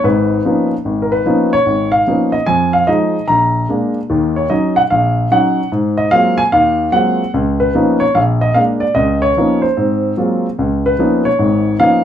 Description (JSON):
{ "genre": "solo jazz", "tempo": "148 BPM", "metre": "4/4", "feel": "swing 66% on 8ths", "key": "Db mixolydian", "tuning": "A4 = 443 Hz", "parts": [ { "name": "dark grand piano", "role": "solo", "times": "0.0-12.0 s", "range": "Ab1 to Bb5", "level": "-12 LUFS", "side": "equal", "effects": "none" } ], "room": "wet studio ambience, RT60 0.5 s", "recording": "heard from further back in the room", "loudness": "-12 LUFS", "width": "side -10 dB against mid", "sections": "0.0-10.6 A section; 10.6-12.0 A section", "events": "none", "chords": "0.0 Db13; 2.5 Fm7; 3.3 Bb7; 4.1 Ebm7; 5.7 Ab13; 7.3 Db13; 8.1 Bb7; 9.0 Db13; 9.8 Ab13; 10.6 Db13" }